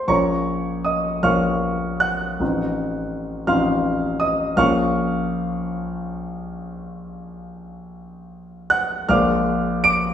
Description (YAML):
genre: classical, romantic nocturne for solo piano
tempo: 51-56 BPM (dotted quarters)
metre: 12/8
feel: rubato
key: Bb minor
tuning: A4 = 440 Hz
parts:
  - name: warm concert grand piano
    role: solo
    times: 0.0-10.1 s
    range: A1 to D7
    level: -19 LUFS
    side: equal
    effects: none
room: wet stone room reverb, RT60 1.2 s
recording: heard from further back in the room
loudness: -19 LUFS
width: side -9 dB against mid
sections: 0.0-10.1 A section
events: none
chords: 0.1 Bbm; 2.4 F7/A; 4.6 Bbm; 9.1 Bb7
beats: | 0.10 1.26 2.41 3.49 | 4.59 5.70 6.86 7.97 | 9.11